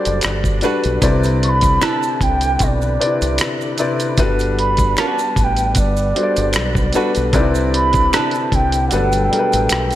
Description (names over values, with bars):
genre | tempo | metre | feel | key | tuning
R&B, neo-soul | 76 BPM | 4/4 | swing 54% on 16ths | G major | A4 = 440 Hz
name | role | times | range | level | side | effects
mellow bansuri | melody | 0.0-10.0 s | D5 to C#6 | -20 LUFS | right 2 dB | none
clear concert grand piano | accompaniment | 0.0-10.0 s | C3 to D5 | -20 LUFS | left 3 dB | slapback echo
tonewheel organ | sustained chords | 0.0-10.0 s | B2 to B4 | -28 LUFS | equal | slow rotary speaker, chorus vibrato
deep dub fingered electric bass | bass | 0.1-9.9 s | F#1 to C2 | -20 LUFS | equal | none
dusty soul sampler-style drum kit | drums | 0.1-10.0 s | hi-hat, kick drum, rim click | -20 LUFS | equal | none
maracas and finger snaps | percussion | 0.1-10.0 s | none | -30 LUFS | right 2 dB | none
flamenco guitar | second line | 0.6-8.3 s | D4 to B4 | -25 LUFS | right 6 dB | slapback echo
room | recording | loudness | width
light reverb, small room reverb | none | -14 LUFS | side -13 dB against mid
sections
0.0-10.0 A section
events
kick muted 8.9-10.0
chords
0.0 Gmaj7; 1.0 Cmaj9; 4.2 Gmaj7; 7.3 Cmaj9; 8.9 Gmaj9